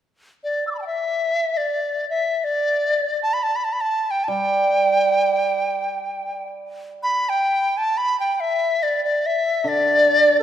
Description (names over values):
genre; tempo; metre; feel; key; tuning
chinese traditional, Chinese chamber ensemble; free time; none; none; G gong mode; A4 = 440 Hz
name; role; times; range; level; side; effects
bright large dizi; melody; 0.4-10.4 s; D5 to E6; -19 LUFS; left 1 dB; none
hammered dulcimer; accompaniment; 4.3-10.4 s; D3 to G3; -21 LUFS; right 3 dB; none
room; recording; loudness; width
moderate scoring stage reverb, RT60 2.0 s; none; -18 LUFS; side -10 dB against mid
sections
0.0-8.0 A section; 8.0-10.4 B section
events
none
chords
none